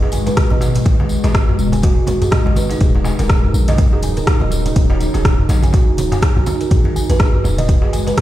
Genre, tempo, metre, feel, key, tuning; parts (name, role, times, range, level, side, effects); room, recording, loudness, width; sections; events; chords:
afro house; 123 BPM; 4/4; swing 58% on 16ths; G# minor; A4 = 438 Hz
ethereal airy pad; sustained chords; 0.0-8.2 s; B2 to F#4; -22 LUFS; left 1 dB; ensemble chorus, built-in reverb, sidechain pumping
kalimba; arpeggios; 0.0-8.2 s; D#4 to G#5; -23 LUFS; right 3 dB; sidechain pumping, low-pass filter, digital delay
warm 808-style bass; bass; 0.0-8.1 s; D#1 to A#1; -18 LUFS; equal; sidechain pumping
darbuka; percussion; 0.0-8.2 s; -24 LUFS; equal
deep house drum kit; drums; 0.1-8.2 s; hi-hat, rim click, toms; -23 LUFS; equal
congas; percussion; 0.1-8.2 s; -24 LUFS; right 2 dB
tambourine; percussion; 0.1-8.2 s; -34 LUFS; left 3 dB
electronic kick drum; drums; 0.4-8.2 s; -14 LUFS; equal
studio ambience; played on a big sound system in a bare room, stone room reverb; -12 LUFS; side -14 dB against mid
0.0-8.2 A section
filter sweep on kalimba 0.0-8.2
0.0 G#m7; 2.8 D#m7; 6.7 G#m7